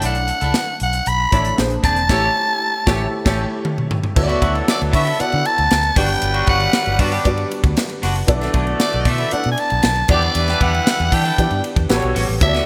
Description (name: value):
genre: polished 1980s jazz-funk pop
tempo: 116 BPM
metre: 4/4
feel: straight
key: unclear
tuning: A4 = 439 Hz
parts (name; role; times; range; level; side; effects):
- raspy soprano saxophone; melody; 0.0-12.7 s; D5 to B5; -22 LUFS; equal; none
- warm baby grand piano; accompaniment; 0.0-12.7 s; G3 to D5; -27 LUFS; equal; ensemble chorus
- clean electric guitar; riff; 0.0-12.7 s; E3 to A4; -29 LUFS; equal; lush chorus
- vintage muted fingered electric bass; bass; 0.0-12.6 s; E1 to E3; -24 LUFS; equal; none
- crisp fusion drum kit; drums; 0.0-12.7 s; crash cymbal, hi-hat, kick drum, ride cymbal, snare drum, toms; -23 LUFS; equal; none
- mellow horn section; second line; 4.2-12.7 s; F#3 to D5; -29 LUFS; equal; none
room: moderate plate reverb, RT60 2.8 s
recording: bright 1980s-style digital production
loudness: -18 LUFS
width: mono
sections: 0.0-4.2 A section; 4.2-12.7 B section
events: band accent 2.1-4.2; drum fill 3.1-4.2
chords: 0.0 Bm11; 1.6 A#9; 2.1 A7; 4.2 D69; 6.0 Gmaj7; 8.3 Bm7; 10.1 Em7; 11.9 A13